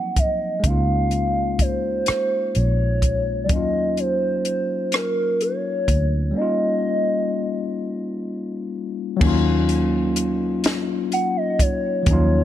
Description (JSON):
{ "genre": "slow six-eight R&B", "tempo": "42 BPM (dotted quarters)", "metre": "6/8", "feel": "straight", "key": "Eb dorian", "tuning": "A4 = 443 Hz", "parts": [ { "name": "gliding portamento lead", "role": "melody", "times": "0.0-12.4 s", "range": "Bb4 to Gb5", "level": "-23 LUFS", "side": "right 1 dB", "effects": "chorus, tape echo" }, { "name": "overdriven tine electric piano", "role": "accompaniment", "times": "0.0-12.4 s", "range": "F3 to F4", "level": "-24 LUFS", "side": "moving between left 8 dB and right 1 dB", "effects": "auto-pan" }, { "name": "vintage muted fingered electric bass", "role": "bass", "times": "0.0-12.4 s", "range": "Ab1 to Eb2", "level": "-22 LUFS", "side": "equal", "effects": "none" }, { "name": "compact cocktail drum kit", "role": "drums", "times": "0.2-12.3 s", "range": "crash cymbal, hi-hat, kick drum, rim click, snare drum", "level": "-22 LUFS", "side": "equal", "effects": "none" } ], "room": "light reverb, small room ambience", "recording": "none", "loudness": "-19 LUFS", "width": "side -12 dB against mid", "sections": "0.0-9.2 A section; 9.2-12.4 B section", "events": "break 6.4-9.2", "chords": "0.0 Ab13; 0.6 Db69; 3.5 Ebm9; 6.4 Eb9; 9.2 Ebm9" }